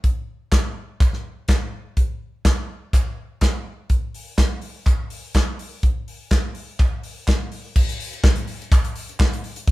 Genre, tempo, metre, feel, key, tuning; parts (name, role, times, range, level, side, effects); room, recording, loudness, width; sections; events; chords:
disco; 124 BPM; 4/4; straight
modern studio drum kit; drums; 0.0-9.7 s; crash cymbal, hi-hat, kick drum, snare drum; -18 LUFS; equal
group handclap; percussion; 0.5-9.3 s; -32 LUFS; right 1 dB
light reverb; band playing live in one room; -20 LUFS; side -18 dB against mid
0.0-7.8 A section; 7.8-9.7 B section